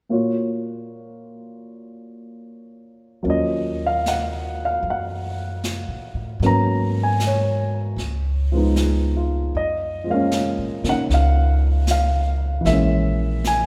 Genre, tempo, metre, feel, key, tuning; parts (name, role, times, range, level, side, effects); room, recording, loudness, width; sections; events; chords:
jazz ballad; 76 BPM; 4/4; swing 69% on 8ths; A4 = 438 Hz
dark grand piano; accompaniment; 0.1-13.7 s; Bb2 to Bb5; -24 LUFS; equal
upright bass; bass; 3.2-13.7 s; Bb1 to Db3; -24 LUFS; equal
jazz brush drum kit; drums; 3.3-13.7 s; brushed snare drum, hi-hat, snare drum; -34 LUFS; equal
wet scoring stage reverb, RT60 1.9 s; recorded in a church or concert hall; -21 LUFS; mono
0.1-3.3 A section; 3.3-13.7 B section
0.1 Gbmaj7/Bb; 3.3 Ebm9; 6.4 Abm11; 8.0 Db9; 9.5 Gbmaj7; 12.7 Bbm7b5